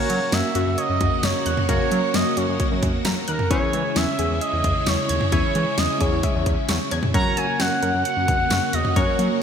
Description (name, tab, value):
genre	synth-pop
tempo	132 BPM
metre	4/4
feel	straight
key	unclear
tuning	A4 = 440 Hz
part	expressive synth lead	melody	0.0-9.4 s	A#4 to A#5	-24 LUFS	right 3 dB	chorus, ping-pong delay
part	warm analog keys	accompaniment	0.0-9.4 s	A#3 to C#5	-29 LUFS	left 3 dB	chorus
part	string machine, violins	sustained chords	0.0-9.4 s	C#3 to F#4	-28 LUFS	equal	ensemble chorus
part	soft round pluck	arpeggios	0.0-9.4 s	C#3 to A#6	-29 LUFS	left 1 dB	chorus, ping-pong delay
part	smooth synth bass	bass	0.1-9.3 s	D#2 to F#3	-26 LUFS	equal	none
part	pop drum kit	drums	0.1-9.3 s	cowbell, hi-hat, kick drum, snare drum, toms	-24 LUFS	equal	gated reverb
room	moderate lush hall reverb, RT60 1.9 s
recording	bright 1980s-style digital production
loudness	-19 LUFS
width	side -7 dB against mid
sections	0.0-9.4 A section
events	none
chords	0.0 F#; 3.5 C#m; 7.1 F#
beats	0.33 0.78 1.23 | 1.69 2.14 2.60 3.05 | 3.51 3.96 4.42 4.87 | 5.33 5.78 6.23 6.69 | 7.14 7.60 8.05 8.51 | 8.96 9.42